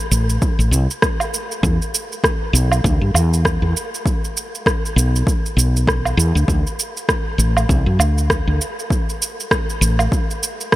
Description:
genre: organic downtempo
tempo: 99 BPM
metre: 4/4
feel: swing 58% on 16ths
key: unclear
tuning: A4 = 440 Hz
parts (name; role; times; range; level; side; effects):
- woody fretless electric bass; bass; 0.1-10.1 s; A1 to G2; -16 LUFS; equal; sidechain pumping
- electronic shaker, rim click and woodblock; drums; 0.1-10.8 s; none; -21 LUFS; right 1 dB; overdrive, small room ambience
- electronic kick drum; drums; 0.4-10.8 s; none; -20 LUFS; equal; overdrive, small room ambience
room: light reverb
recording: none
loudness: -16 LUFS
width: side -16 dB against mid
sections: 0.0-10.8 A section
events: none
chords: none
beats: 0.42 1.02 | 1.63 2.24 2.84 3.45 | 4.05 4.66 5.27 5.87 | 6.48 7.08 7.69 8.30 | 8.90 9.51 10.12 10.72

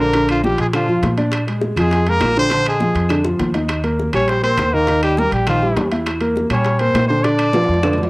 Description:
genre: Afro-Cuban jazz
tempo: 203 BPM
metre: 4/4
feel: straight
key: Bb mixolydian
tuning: A4 = 439 Hz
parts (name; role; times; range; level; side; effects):
- clear trumpet; melody; 0.0-8.1 s; F4 to D5; -19 LUFS; equal; none
- trombone with straight mute; second line; 0.0-8.1 s; F3 to D4; -27 LUFS; left 1 dB; cassette tape
- dark concert grand piano; accompaniment; 0.0-8.1 s; D3 to E5; -19 LUFS; equal; cassette tape
- upright bass; bass; 0.0-8.1 s; Bb1 to Bb2; -22 LUFS; equal; none
- bongos; percussion; 0.1-8.1 s; none; -28 LUFS; left 3 dB; none
- congas; percussion; 0.1-8.1 s; none; -26 LUFS; equal; none
- timbales; percussion; 0.1-8.1 s; none; -28 LUFS; right 3 dB; none
- claves; percussion; 0.3-8.0 s; none; -33 LUFS; left 2 dB; none
room: light reverb, small room ambience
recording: home recording on cassette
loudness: -14 LUFS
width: side -23 dB against mid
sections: 0.0-8.1 A section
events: drum fill 3.1-3.7, 7.5-8.1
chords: 0.0 Bb7; 3.7 Ebadd9; 6.1 Edim7; 7.2 Bb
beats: | 0.14 0.44 0.73 1.03 | 1.32 1.62 1.92 2.21 | 2.51 2.80 3.10 3.40 | 3.69 3.99 4.29 4.58 | 4.88 5.17 5.47 5.76 | 6.06 6.36 6.65 6.95 | 7.24 7.54 7.83

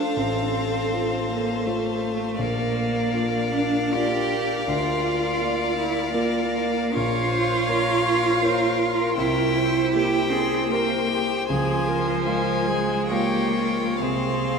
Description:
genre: classical, slow romantic movement for piano quintet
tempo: 65-84 BPM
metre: 3/4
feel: rubato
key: unclear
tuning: A4 = 440 Hz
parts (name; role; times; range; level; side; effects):
- rich violin; melody; 0.0-14.6 s; F5 to Ab5; -29 LUFS; left 6 dB; none
- rich cello; second line; 0.0-14.6 s; F3 to G4; -24 LUFS; right 2 dB; none
- rich violin; second line; 0.0-14.6 s; Bb4 to D5; -31 LUFS; left 2 dB; none
- warm concert grand piano; accompaniment; 0.0-14.6 s; A1 to F5; -27 LUFS; equal; none
- warm viola; accompaniment; 0.0-14.6 s; F4 to Db5; -30 LUFS; equal; none
room: wet cathedral reverb, RT60 4.9 s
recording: in a vast, echoing space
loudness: -20 LUFS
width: side -5 dB against mid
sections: 0.0-14.6 A section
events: none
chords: 0.2 F/A; 2.4 Bb; 4.7 Bb/D; 6.9 Bbm; 9.2 C7; 11.5 Db; 14.0 Fm/C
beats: | 0.16 0.92 1.66 | 2.40 3.13 3.93 | 4.68 5.40 6.13 | 6.94 7.67 8.40 | 9.17 9.93 10.70 | 11.49 12.26 13.11 | 14.00

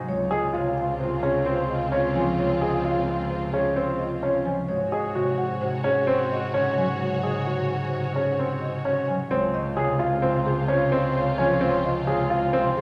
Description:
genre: classical, minimalist pattern music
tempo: 130 BPM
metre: 5/4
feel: straight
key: Db major from 9.3 s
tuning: A4 = 440 Hz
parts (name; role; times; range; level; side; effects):
- marimba with soft mallets; melody; 0.0-12.8 s; Ab4 to Ab5; -33 LUFS; equal; none
- concert harp; accompaniment; 0.0-12.8 s; C3 to C4; -32 LUFS; equal; none
- mellow alto flute; second line; 0.1-12.8 s; F4 to Gb4; -35 LUFS; equal; none
- warm symphonic string section; sustained chords; 0.1-12.8 s; C4 to Db5; -36 LUFS; equal; none
- clear double bass; bass; 0.1-12.8 s; Db2 to Ab2; -34 LUFS; equal; none
- clear concert grand piano; arpeggios; 0.3-12.8 s; C4 to Ab4; -28 LUFS; equal; none
room: wet scoring stage reverb, RT60 1.6 s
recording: none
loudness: -24 LUFS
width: mono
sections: 0.0-9.3 A section; 9.3-12.8 B section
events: none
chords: 0.1 Dbmaj7; 4.7 Ab7sus4; 9.3 Dbmaj7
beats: | 0.08 0.54 1.00 1.46 1.92 | 2.38 2.85 3.31 3.77 4.23 | 4.69 5.15 5.61 6.08 6.54 | 7.00 7.46 7.92 8.38 8.85 | 9.31 9.77 10.23 10.69 11.15 | 11.61 12.08 12.54

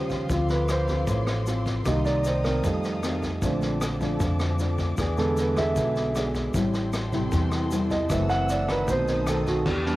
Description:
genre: bossa nova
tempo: 154 BPM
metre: 4/4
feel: straight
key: A minor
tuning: A4 = 436 Hz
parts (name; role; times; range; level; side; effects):
- nylon-string guitar; accompaniment; 0.0-10.0 s; F2 to B#4; -30 LUFS; left 1 dB; cassette tape
- warm concert grand piano; accompaniment; 0.0-10.0 s; C3 to F#5; -27 LUFS; right 2 dB; cassette tape
- dark studio violin section; sustained chords; 0.0-10.0 s; G#4 to E6; -38 LUFS; left 2 dB; cassette tape
- upright bass; bass; 0.0-10.0 s; F#1 to F2; -28 LUFS; equal; none
- vintage drum kit; drums; 0.1-9.9 s; crash cymbal, kick drum, rim click, snare drum; -32 LUFS; equal; none
- egg shaker; percussion; 0.1-9.7 s; none; -46 LUFS; left 3 dB; none
room: light reverb, small room reverb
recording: home recording on cassette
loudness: -23 LUFS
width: side -17 dB against mid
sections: 0.0-9.7 A section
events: grand piano solo 0.0-10.0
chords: 0.3 Dm7; 1.9 Cm7; 2.6 F7; 3.4 Bbmaj7; 5.0 E7; 6.5 Am7; 8.1 F#m7b5; 8.9 B7b9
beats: | 0.29 0.69 1.08 1.47 | 1.86 2.25 2.64 3.03 | 3.42 3.81 4.20 4.59 | 4.98 5.37 5.76 6.15 | 6.54 6.93 7.32 7.71 | 8.10 8.49 8.88 9.27 | 9.66

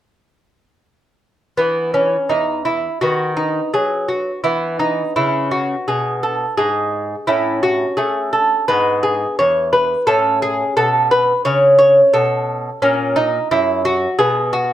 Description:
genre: classical, baroque-style dance for lute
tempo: 86 BPM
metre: 4/4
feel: rubato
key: E major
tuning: A4 = 440 Hz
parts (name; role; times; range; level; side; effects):
- lute; solo; 1.6-14.7 s; E2 to C#5; -14 LUFS; equal; slapback echo
room: light reverb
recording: none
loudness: -14 LUFS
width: side -12 dB against mid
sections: 1.6-14.7 A section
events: none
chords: 1.6 N.C.; 3.0 B/D#; 4.4 E; 7.3 A; 8.7 E/G#; 10.1 A; 12.8 F#/A#; 14.2 G#m7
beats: | 1.58 2.29 3.02 3.73 | 4.44 5.16 5.88 6.59 | 7.28 7.99 8.69 9.39 | 10.08 10.77 11.45 12.14 | 12.82 13.51 14.20

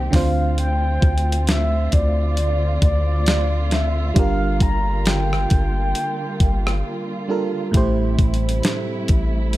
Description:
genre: contemporary R&B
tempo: 67 BPM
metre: 4/4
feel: swing 58% on 16ths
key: unclear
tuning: A4 = 440 Hz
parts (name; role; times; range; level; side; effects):
- mellow horn-like synth lead; melody; 0.0-7.3 s; D5 to Bb5; -26 LUFS; left 1 dB; chorus, tape echo
- FM electric piano; accompaniment; 0.0-9.6 s; A2 to C5; -26 LUFS; right 3 dB; chorus
- dark studio string section; sustained chords; 0.0-9.6 s; C3 to F4; -29 LUFS; right 1 dB; none
- long sustained 808-style bass; bass; 0.0-9.6 s; G1 to D2; -20 LUFS; equal; none
- crisp 8-bit digital drum machine; drums; 0.1-9.6 s; hi-hat, kick drum, rim click, snare drum; -19 LUFS; equal; none
room: digital ambience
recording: dark, warm production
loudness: -17 LUFS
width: side -16 dB against mid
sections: 0.0-9.6 A section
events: break 6.8-7.7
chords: 0.1 Dm7; 4.2 Gm7; 7.7 Am7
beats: | 0.58 1.47 2.37 3.27 | 4.16 5.06 5.95 6.85 | 7.74 8.64 9.53

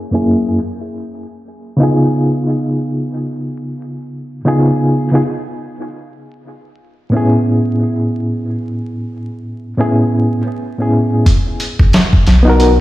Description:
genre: trip hop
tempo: 90 BPM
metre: 4/4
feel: swing 59% on 16ths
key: unclear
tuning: A4 = 440 Hz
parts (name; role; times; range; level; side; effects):
- reed electric piano; accompaniment; 0.1-12.8 s; F#2 to A#4; -14 LUFS; equal; tremolo, tape echo
- dusty soul sampler-style drum kit; drums; 11.3-12.8 s; hi-hat, kick drum, snare drum; -12 LUFS; equal; overdrive
- soft dub sub bass; bass; 11.8-12.8 s; G#1 to B1; -10 LUFS; equal; tube saturation
room: light reverb, digital ambience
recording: played on a big sound system in a bare room, stone room reverb, vinyl crackle, low-pass filter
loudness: -12 LUFS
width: side -16 dB against mid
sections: 0.0-11.3 A section; 11.3-12.8 B section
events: filter sweep 0.0-11.3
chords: 0.0 F#7; 0.6 C#7; 5.9 Amaj7; 11.3 G#m7 (rootless)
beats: | 0.60 1.26 1.93 2.60 | 3.26 3.93 4.60 5.26 | 5.93 6.60 7.26 7.93 | 8.60 9.26 9.93 10.60 | 11.26 11.93 12.60

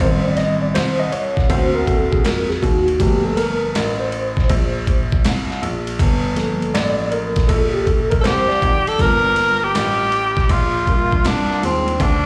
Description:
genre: hip hop, jazz-hop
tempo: 80 BPM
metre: 4/4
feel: swing 66% on 16ths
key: G minor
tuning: A4 = 440 Hz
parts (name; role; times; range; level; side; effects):
- mellow tine electric piano; accompaniment; 0.0-12.0 s; Eb3 to Eb5; -23 LUFS; equal; slapback echo
- dark baby grand piano; bass; 0.0-12.3 s; G1 to E#2; -25 LUFS; equal; none
- boom bap sampler-style drum kit; drums; 0.0-12.2 s; hi-hat, kick drum, ride cymbal, snare drum; -23 LUFS; equal; overdrive
- warm tenor saxophone; melody; 8.2-12.3 s; C4 to Bb4; -20 LUFS; equal; tape echo
room: light reverb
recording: live gig heard through the venue's PA, club reverb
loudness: -18 LUFS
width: mono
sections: 0.0-9.0 A section; 9.0-12.3 B section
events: tine electric piano solo 0.0-9.0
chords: 0.0 Am7b5; 1.5 D7alt; 3.0 Gm7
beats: | 0.00 0.75 1.50 2.25 | 3.00 3.75 4.50 5.25 | 6.00 6.75 7.50 8.25 | 9.00 9.75 10.50 11.25 | 12.00

